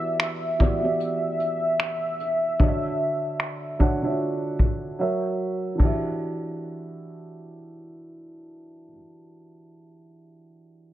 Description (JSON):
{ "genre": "contemporary R&B", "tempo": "75 BPM", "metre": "4/4", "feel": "swing 58% on 16ths", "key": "E dorian", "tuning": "A4 = 441 Hz", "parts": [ { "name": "warm velvety synth lead", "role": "melody", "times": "0.0-5.0 s", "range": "E5", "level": "-26 LUFS", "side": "equal", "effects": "chorus" }, { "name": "felt-muted upright piano", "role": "accompaniment", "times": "0.0-10.9 s", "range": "D3 to F#5", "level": "-28 LUFS", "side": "right 2 dB", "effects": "none" }, { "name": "soft brush drum kit", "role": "drums", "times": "0.2-6.0 s", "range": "crash cymbal, finger snaps, hi-hat, kick drum", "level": "-22 LUFS", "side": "equal", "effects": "none" } ], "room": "studio ambience", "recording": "low-pass filter", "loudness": "-22 LUFS", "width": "side -13 dB against mid", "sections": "0.0-5.8 A section; 5.8-9.0 B section", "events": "filter sweep 0.0-5.8; drums muted 5.0-5.8", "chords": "0.0 Em9; 2.6 Dmaj7; 5.0 F#7; 5.8 Em9", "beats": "0.20 0.99 1.79 | 2.60 3.40 4.20 5.00 | 5.79 6.59 7.39 8.20" }